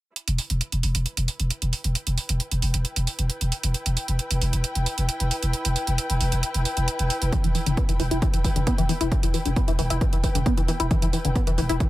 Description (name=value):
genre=driving peak-time techno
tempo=134 BPM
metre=4/4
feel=straight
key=E minor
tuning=A4 = 439 Hz
part: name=electronic hi-hat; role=drums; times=0.2-11.9 s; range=none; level=-29 LUFS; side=right 4 dB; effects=none
part: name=dark studio string section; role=texture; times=0.2-11.9 s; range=E4 to G5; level=-32 LUFS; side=left 1 dB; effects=sidechain pumping
part: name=growling 808-style bass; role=bass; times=0.3-11.8 s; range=E1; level=-24 LUFS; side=equal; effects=overdrive, sidechain pumping, low-pass filter
part: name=tight sequenced synth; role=riff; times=7.3-11.8 s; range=D3 to E4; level=-27 LUFS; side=left 2 dB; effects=chorus, phaser, vintage 12-bit sampler grit, sidechain pumping, dub echo
part: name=electronic kick drum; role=drums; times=7.3-11.9 s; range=none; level=-23 LUFS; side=equal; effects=none
room=little or no reverb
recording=none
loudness=-22 LUFS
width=side -16 dB against mid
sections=0.2-11.9 A section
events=fade-in on string section 0.2-11.9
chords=0.2 Em